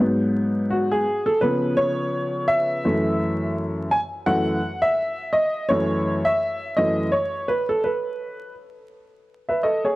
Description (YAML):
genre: hip hop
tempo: 84 BPM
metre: 4/4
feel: swing 57% on 16ths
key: F# dorian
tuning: A4 = 440 Hz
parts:
  - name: warm upright piano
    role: solo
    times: 0.0-10.0 s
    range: F#2 to G#5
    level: -20 LUFS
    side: equal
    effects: none
room: moderate plate reverb, RT60 3.0 s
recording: worn, warbling old tape, cassette tape, vinyl crackle, warbly pitch drift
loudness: -20 LUFS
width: side -19 dB against mid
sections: 0.0-8.6 A section; 8.6-10.0 B section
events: upright piano solo 0.0-8.6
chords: 0.0 G#m7; 1.4 C#7#9; 2.8 F#m7; 8.6 N.C.